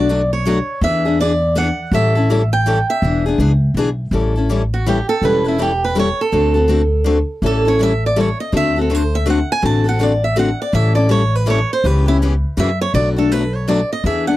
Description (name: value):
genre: acoustic string swing (jazz manouche)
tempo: 163 BPM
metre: 3/4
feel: swing 62% on 8ths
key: A mixolydian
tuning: A4 = 440 Hz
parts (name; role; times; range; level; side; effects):
- picked swing-style acoustic guitar; melody; 0.0-14.4 s; E4 to A5; -19 LUFS; right 2 dB; none
- picked steel-string acoustic guitar; accompaniment; 0.0-14.4 s; B2 to A4; -18 LUFS; left 3 dB; none
- upright bass; bass; 0.0-14.3 s; E1 to F#2; -17 LUFS; equal; none
room: light reverb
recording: dry, close 1970s-style studio recording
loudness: -14 LUFS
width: side -15 dB against mid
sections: 0.0-4.1 A section; 4.1-14.4 A section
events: steel-string acoustic guitar solo 0.0-4.1, 4.1-14.4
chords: 0.0 Bm7; 0.8 E7; 1.9 A7; 3.0 E7; 4.1 A7; 6.3 D7; 7.4 A7; 8.5 D7; 10.7 A7; 11.8 C#m7b5; 12.6 F#7; 12.9 Bm7